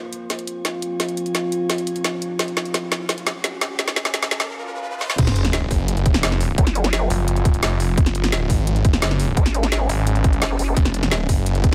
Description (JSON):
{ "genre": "dark technical drum and bass", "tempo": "172 BPM", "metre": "4/4", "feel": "straight", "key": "F phrygian", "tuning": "A4 = 442 Hz", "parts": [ { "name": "metallic inharmonic drone", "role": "sustained chords", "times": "0.0-11.7 s", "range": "F3 to Ab4", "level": "-31 LUFS", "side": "equal", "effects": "chorus, built-in reverb, sidechain pumping" }, { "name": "riser, swell and sub drop", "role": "sound effects", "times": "2.9-6.6 s", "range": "none", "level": "-31 LUFS", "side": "equal", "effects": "none" }, { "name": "drum and bass drum kit", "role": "drums", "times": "0.1-11.7 s", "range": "crash cymbal, hi-hat, snare drum", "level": "-26 LUFS", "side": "equal", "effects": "overdrive, high-pass filter on hats, high-pass filter on snare, high-pass filter on cymbals" }, { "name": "snarling distorted saw bass", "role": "bass", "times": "5.2-11.7 s", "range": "F1 to Ab1", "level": "-23 LUFS", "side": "equal", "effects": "distortion, tube saturation, sidechain pumping" }, { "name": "electronic kick drum", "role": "drums", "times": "5.2-11.7 s", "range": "none", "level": "-19 LUFS", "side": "equal", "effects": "overdrive" }, { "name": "vowel-sweep wobble bass", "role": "bass", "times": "6.6-7.1, 9.4-10.8 s", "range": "Gb1 to Ab1", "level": "-23 LUFS", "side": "equal", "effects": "chorus" } ], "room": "light reverb, digital ambience", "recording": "high-pass filter", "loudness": "-21 LUFS", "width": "mono", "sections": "0.0-5.2 A section; 5.2-11.7 B section", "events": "build-up 0.0-5.2; drum fill 0.0-4.5, 5.0; riser 2.9-5.2; filter sweep 0.0-5.2; break 4.5-5.2; swell 4.5-5.2; drop 5.2-11.7; impact 5.2-6.6", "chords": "0.0 F5; 2.4 Gbsus2; 5.2 F5; 8.0 Gbsus2; 10.8 F5", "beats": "0.30 0.65 | 1.00 1.35 1.70 2.04 | 2.39 2.74 3.09 3.44 | 3.79 4.14 4.49 4.83 | 5.18 5.53 5.88 6.23 | 6.58 6.93 7.28 7.63 | 7.97 8.32 8.67 9.02 | 9.37 9.72 10.07 10.42 | 10.77 11.11 11.46" }